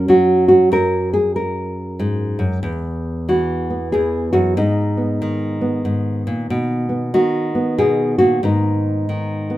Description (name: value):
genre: folk, solo fingerstyle acoustic guitar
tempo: 94 BPM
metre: 3/4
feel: swing 63% on 8ths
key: unclear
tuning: A4 = 439 Hz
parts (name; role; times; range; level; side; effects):
- nylon-string guitar; solo; 0.0-9.6 s; E2 to A#4; -16 LUFS; equal; none
room: light reverb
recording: minimal, uncompressed stereo recording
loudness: -16 LUFS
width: side -15 dB against mid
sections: 0.0-2.7 A section; 2.7-9.6 B section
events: none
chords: 0.0 F#; 2.7 Esus2; 4.6 G#m; 6.5 B; 8.4 G#m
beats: 0.09 | 0.73 1.37 2.01 | 2.65 3.29 3.93 | 4.58 5.22 5.86 | 6.50 7.14 7.79 | 8.43 9.07